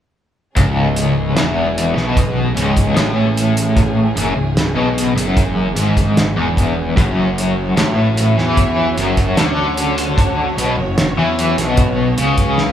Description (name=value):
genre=psychedelic rock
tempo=75 BPM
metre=4/4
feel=straight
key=C# minor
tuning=A4 = 440 Hz
part: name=dark symphonic string section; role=sustained chords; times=0.6-12.7 s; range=E3 to C#5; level=-25 LUFS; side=right 2 dB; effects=none
part: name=cranked stack guitar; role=riff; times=0.6-12.7 s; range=C#2 to E3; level=-16 LUFS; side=left 1 dB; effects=overdrive, tremolo
part: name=fuzz picked electric bass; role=bass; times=0.6-12.7 s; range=C#1 to E2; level=-22 LUFS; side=right 1 dB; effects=overdrive
part: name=cloth-damped thuddy drum kit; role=drums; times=0.6-12.7 s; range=hi-hat, kick drum, snare drum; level=-18 LUFS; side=equal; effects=none
room=moderate large studio reverb, RT60 1.4 s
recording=band playing live in one room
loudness=-13 LUFS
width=side -10 dB against mid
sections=0.6-12.7 A section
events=drum fill 12.6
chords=0.6 C#m; 7.0 F#5